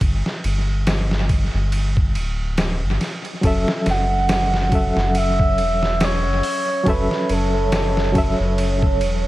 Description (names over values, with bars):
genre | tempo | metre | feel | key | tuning
trip hop | 70 BPM | 4/4 | swing 57% on 16ths | F# phrygian | A4 = 440 Hz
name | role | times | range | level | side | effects
round analog bass | bass | 0.0-9.3 s | D1 to G1 | -21 LUFS | equal | tube saturation
trip hop sampler-style drum kit | drums | 0.0-9.2 s | hi-hat, kick drum, ride cymbal, snare drum | -22 LUFS | equal | small room ambience, tape echo
barky reed electric piano | accompaniment | 3.4-9.3 s | F#3 to E5 | -23 LUFS | equal | overdrive, fast tremolo, tape echo
deep dark ambient pad | sustained chords | 4.6-9.3 s | C#5 | -28 LUFS | right 2 dB | chorus, built-in reverb
trumpet with bucket mute | melody | 3.9-8.6 s | A4 to F#5 | -22 LUFS | right 1 dB | tape echo
room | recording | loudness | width
little or no reverb | echo-heavy mix, vinyl crackle | -17 LUFS | side -16 dB against mid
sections
0.0-9.3 A section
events
none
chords
0.0 G5; 3.4 F#m7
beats
| 0.01 0.87 1.73 2.58 | 3.44 4.30 5.15 6.01 | 6.87 7.72 8.58